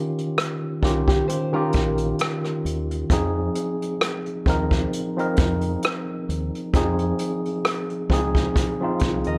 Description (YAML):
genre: lo-fi hip hop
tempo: 66 BPM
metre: 4/4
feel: swing 56% on 16ths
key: F minor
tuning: A4 = 439 Hz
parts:
  - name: tine electric piano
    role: accompaniment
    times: 0.0-9.4 s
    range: Eb3 to Bb4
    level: -27 LUFS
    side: equal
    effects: overdrive, cassette tape, low-pass filter
  - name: vintage brush drum kit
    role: drums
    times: 0.2-9.4 s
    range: hi-hat, kick drum, rim click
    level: -26 LUFS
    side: equal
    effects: none
  - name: deep dub fingered electric bass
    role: bass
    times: 0.8-9.4 s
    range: Bb1 to F2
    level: -29 LUFS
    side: equal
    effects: none
  - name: nylon-string guitar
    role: second line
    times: 1.1-2.9, 9.3-9.4 s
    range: Db4 to Eb5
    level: -31 LUFS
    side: equal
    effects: low-pass filter, analog delay
room: moderate small room ambience, RT60 0.5 s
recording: none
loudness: -23 LUFS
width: mono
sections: 0.0-9.4 A section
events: none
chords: 0.0 Eb9; 3.1 Fm7